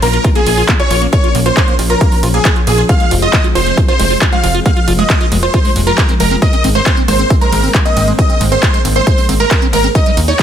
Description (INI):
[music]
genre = uplifting trance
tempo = 136 BPM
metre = 4/4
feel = straight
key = unclear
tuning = A4 = 444 Hz
[part]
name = big supersaw lead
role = melody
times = 0.0-10.4 s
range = Ab4 to F5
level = -17 LUFS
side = equal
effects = phaser, sidechain pumping, tape echo
[part]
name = warm grand piano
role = second line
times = 0.0-10.4 s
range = Ab4 to F5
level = -20 LUFS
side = right 2 dB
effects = sidechain pumping, tape echo
[part]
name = lush unison pad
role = sustained chords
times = 0.0-10.4 s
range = Eb3 to Bb4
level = -21 LUFS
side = left 1 dB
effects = chorus, sidechain pumping
[part]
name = liquid acid bass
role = arpeggios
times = 0.0-10.4 s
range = G3 to F4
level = -21 LUFS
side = right 2 dB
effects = phaser, sidechain pumping, tape echo
[part]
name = plucky analog bass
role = bass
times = 0.0-10.3 s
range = F1 to Eb2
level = -16 LUFS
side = equal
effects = sidechain pumping
[part]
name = big-room dance drum kit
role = drums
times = 0.0-10.4 s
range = handclaps, hi-hat, ride cymbal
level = -20 LUFS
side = right 1 dB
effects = overdrive, sidechain pumping on hats, small room ambience, sidechain pumping on cymbals
[part]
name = electronic kick drum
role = drums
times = 0.2-10.4 s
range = none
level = -12 LUFS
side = equal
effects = overdrive, small room ambience
[sound]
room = digital ambience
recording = none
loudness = -9 LUFS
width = side -9 dB against mid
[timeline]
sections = 0.0-10.4 A section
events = none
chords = 0.0 Bbm; 2.9 Fm; 6.4 Abadd9